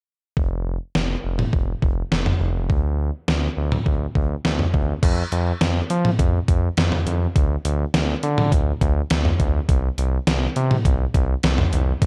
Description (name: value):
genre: synth-pop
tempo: 103 BPM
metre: 4/4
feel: straight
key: unclear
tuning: A4 = 440 Hz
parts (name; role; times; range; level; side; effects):
- smooth synth bass; bass; 0.4-12.1 s; F1 to F3; -24 LUFS; equal; none
- gated 80s digital drum machine; drums; 0.4-12.1 s; crash cymbal, hi-hat, kick drum, snare drum, toms; -23 LUFS; equal; gated reverb, gated reverb snare, overdrive
room: light reverb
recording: dark, warm production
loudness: -21 LUFS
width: mono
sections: 0.4-5.0 A section; 5.0-12.1 B section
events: none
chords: none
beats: | 0.37 0.95 1.53 2.12 | 2.70 3.28 3.86 4.45 | 5.03 5.61 6.19 6.78 | 7.36 7.94 8.52 9.11 | 9.69 10.27 10.85 11.44 | 12.02